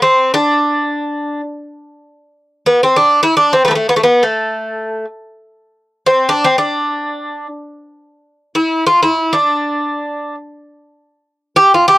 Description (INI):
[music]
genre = Turkish makam ensemble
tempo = free time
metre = none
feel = none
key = D makam huseyni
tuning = A4 = 440 Hz
[part]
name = Greek bouzouki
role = solo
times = 0.0-12.0 s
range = A3 to G4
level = -12 LUFS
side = equal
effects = none
[sound]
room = little or no reverb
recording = dry, close 1970s-style studio recording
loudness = -12 LUFS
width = side -17 dB against mid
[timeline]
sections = 0.0-12.0 A section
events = none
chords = none